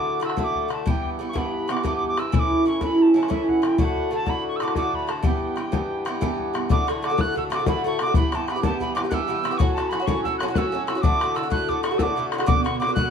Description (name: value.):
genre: celtic folk, Celtic slip jig.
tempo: 124 BPM (dotted quarters).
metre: 9/8.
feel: straight.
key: unclear.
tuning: A4 = 440 Hz.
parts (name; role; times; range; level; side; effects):
reedy wooden whistle; melody; 0.0-13.1 s; E5 to F#6; -27 LUFS; right 3 dB; none.
Irish bouzouki; accompaniment; 0.0-13.1 s; G2 to G4; -23 LUFS; right 1 dB; none.
bodhran; percussion; 0.2-13.0 s; none; -24 LUFS; left 3 dB; none.
room: moderate studio reverb, RT60 0.5 s.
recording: dark, warm production.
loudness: -20 LUFS.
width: side -7 dB against mid.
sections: 0.0-6.7 A section; 6.7-13.1 B section.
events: none.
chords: 0.0 D; 0.9 Em; 2.3 A; 3.8 D; 5.2 Em; 6.7 D; 8.2 Em; 9.6 F#m; 11.0 D; 12.5 Bm.